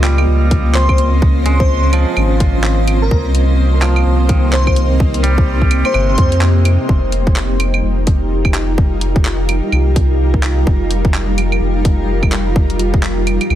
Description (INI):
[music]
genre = future garage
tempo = 127 BPM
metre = 4/4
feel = swing 60% on 16ths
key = F minor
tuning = A4 = 443 Hz
[part]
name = twangy electric guitar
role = accompaniment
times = 0.0-7.0 s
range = C3 to Ab3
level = -24 LUFS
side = right 2 dB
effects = sidechain pumping, tape echo
[part]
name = granular cloud pad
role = sustained chords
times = 0.0-13.6 s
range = G3 to C5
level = -19 LUFS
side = equal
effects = built-in reverb, sidechain pumping
[part]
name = warm sub bass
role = bass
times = 0.0-13.6 s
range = F1 to F2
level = -15 LUFS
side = equal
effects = sidechain pumping
[part]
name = garage drum kit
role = drums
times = 0.0-13.6 s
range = claves, handclaps, hi-hat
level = -22 LUFS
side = right 2 dB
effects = soft clipping on snare
[part]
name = drifting glass-harmonics texture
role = texture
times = 0.0-6.9 s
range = Eb5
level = -32 LUFS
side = right 8 dB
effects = chorus, built-in reverb
[part]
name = electronic kick drum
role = drums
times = 0.5-13.0 s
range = none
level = -14 LUFS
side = equal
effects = none
[part]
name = airy dreamy lead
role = melody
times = 0.7-6.4 s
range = Bb4 to C5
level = -23 LUFS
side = left 1 dB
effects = chorus, tape echo
[sound]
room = digital ambience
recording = dense, heavily limited modern master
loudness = -12 LUFS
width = side -12 dB against mid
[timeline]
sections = 0.0-6.9 A section; 6.9-13.6 B section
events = none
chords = 0.0 Dbmaj7; 3.1 Cm7; 6.9 F9sus4